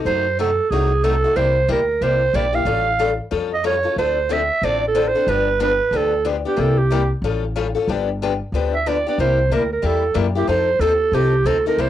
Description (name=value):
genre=acoustic string swing (jazz manouche)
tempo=184 BPM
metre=4/4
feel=swing 60% on 8ths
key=C mixolydian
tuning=A4 = 442 Hz
part: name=picked old ladder-braced acoustic guitar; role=accompaniment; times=0.0-11.9 s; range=C3 to A4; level=-23 LUFS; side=left 8 dB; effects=cassette tape
part: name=growling clarinet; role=melody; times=0.1-11.9 s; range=G4 to F5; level=-18 LUFS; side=right 4 dB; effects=cassette tape
part: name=upright bass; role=bass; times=0.1-11.9 s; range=G1 to F#2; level=-22 LUFS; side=left 1 dB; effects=transformer saturation
room=moderate small room reverb, RT60 0.5 s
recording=home recording on cassette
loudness=-16 LUFS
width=side -12 dB against mid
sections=0.0-9.2 A section; 9.2-11.9 A section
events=none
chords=0.1 F#dim7; 1.4 C7; 2.7 Aaug7; 4.0 Dm7; 5.3 G7; 6.6 C7; 7.2 Aaug7; 7.9 G7; 9.2 C7; 10.5 F7